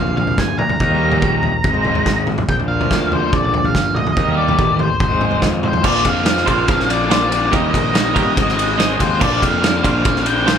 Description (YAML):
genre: indie rock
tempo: 143 BPM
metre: 4/4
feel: straight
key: Bb mixolydian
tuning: A4 = 440 Hz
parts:
  - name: octave-fuzz lead guitar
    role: melody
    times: 0.0-10.6 s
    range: C5 to Bb5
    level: -19 LUFS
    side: equal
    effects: distortion
  - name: crunchy overdriven guitar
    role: riff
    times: 0.0-10.6 s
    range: Ab2 to F4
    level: -22 LUFS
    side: left 6 dB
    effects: none
  - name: twelve-string electric guitar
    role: riff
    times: 0.0-10.6 s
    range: Eb3 to C5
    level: -23 LUFS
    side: right 5 dB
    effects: none
  - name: picked electric bass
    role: bass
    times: 0.0-10.6 s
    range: G1 to F2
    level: -23 LUFS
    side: right 1 dB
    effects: none
  - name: loose indie drum kit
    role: drums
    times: 0.1-10.6 s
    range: crash cymbal, kick drum, ride cymbal, snare drum, toms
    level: -18 LUFS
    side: equal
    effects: none
  - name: bright tonewheel organ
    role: sustained chords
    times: 5.8-10.6 s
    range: D4 to Ab5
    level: -30 LUFS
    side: equal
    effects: none
room: light reverb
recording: band playing live in one room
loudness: -14 LUFS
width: side -8 dB against mid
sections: 0.0-5.8 A section; 5.8-10.6 B section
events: none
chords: 0.0 Bbadd9; 0.8 Eb; 1.6 Ab; 2.5 Bbadd9; 4.2 Eb; 5.0 Ab; 5.8 Bbadd9; 7.5 Eb; 8.4 Ab; 9.2 Bbadd9